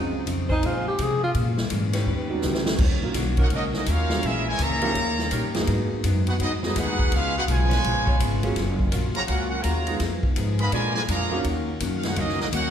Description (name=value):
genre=jazz, big band swing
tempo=166 BPM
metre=4/4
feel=swing 64% on 8ths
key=Eb minor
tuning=A4 = 440 Hz
part: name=archtop guitar, miked and amplified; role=accompaniment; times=0.0-12.7 s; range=Ab2 to Ab4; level=-32 LUFS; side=left 4 dB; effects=none
part: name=warm concert grand piano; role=accompaniment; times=0.0-11.4 s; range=E#3 to Ab4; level=-31 LUFS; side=right 3 dB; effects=none
part: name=upright bass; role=bass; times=0.0-12.7 s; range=Gb1 to B#2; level=-26 LUFS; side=equal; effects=none
part: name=swinging big-band drum kit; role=drums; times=0.3-12.6 s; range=crash cymbal, hi-hat, kick drum, ride cymbal, snare drum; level=-28 LUFS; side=equal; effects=none
part: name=breathy tenor saxophone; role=melody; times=0.5-1.3 s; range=D#4 to G#4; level=-27 LUFS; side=equal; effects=none
part: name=mellow saxophone section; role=sustained chords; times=0.5-5.5, 7.7-9.1, 11.3-11.8 s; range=Gb3 to Db5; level=-34 LUFS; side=equal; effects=none
part: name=brilliant trumpet section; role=melody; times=3.4-12.7 s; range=Cb4 to Cb6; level=-27 LUFS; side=right 1 dB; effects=none
part: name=mellow trombone section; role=second line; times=3.4-12.7 s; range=Db3 to Gb4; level=-33 LUFS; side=right 2 dB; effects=none
room=wet scoring stage reverb, RT60 1.6 s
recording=recorded in a church or concert hall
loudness=-21 LUFS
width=side -9 dB against mid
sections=0.0-2.8 A section; 2.8-12.7 B section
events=tenor saxophone solo 0.0-2.8; drum fill 2.4-2.8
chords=0.0 C#maj7; 1.3 A#m7b5; 2.1 D#7alt; 2.8 Ebm7; 4.2 Bbm7b5; 5.0 Eb7; 5.7 Abm7; 7.1 Db7; 8.6 Gbmaj7; 10.0 Fm7b5; 10.7 Bb7; 11.4 Ebm7